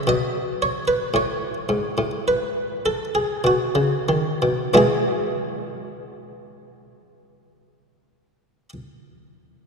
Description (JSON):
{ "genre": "classical, baroque-style suite movement for harpsichord", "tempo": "44-57 BPM", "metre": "4/4", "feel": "rubato", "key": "E major", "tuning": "A4 = 441 Hz", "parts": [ { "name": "buff-stop harpsichord", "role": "solo", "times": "0.0-8.7 s", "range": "E2 to D#5", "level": "-20 LUFS", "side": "equal", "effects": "none" } ], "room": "wet church reverb, RT60 3.5 s", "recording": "none", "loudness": "-19 LUFS", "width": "side -5 dB against mid", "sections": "0.0-4.8 A section; 4.8-9.7 B section", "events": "slowing down 0.0-4.8", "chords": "0.1 B7; 4.8 E" }